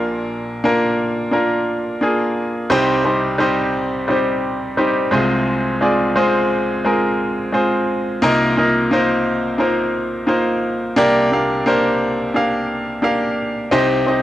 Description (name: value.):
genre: pop.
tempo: 87 BPM.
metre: 4/4.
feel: straight.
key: C minor.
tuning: A4 = 440 Hz.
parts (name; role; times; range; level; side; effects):
clear baby grand piano; solo; 0.0-14.2 s; Bb1 to F5; -15 LUFS; equal; cassette tape.
room: moderate small room ambience, RT60 0.5 s.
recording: home recording on cassette.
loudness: -15 LUFS.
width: side -13 dB against mid.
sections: 0.0-2.7 A section; 2.7-14.2 B section.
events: none.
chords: 0.0 Bb; 2.7 Cm; 5.1 Fm/C; 8.2 Bbsus4/C; 11.0 Gm/C.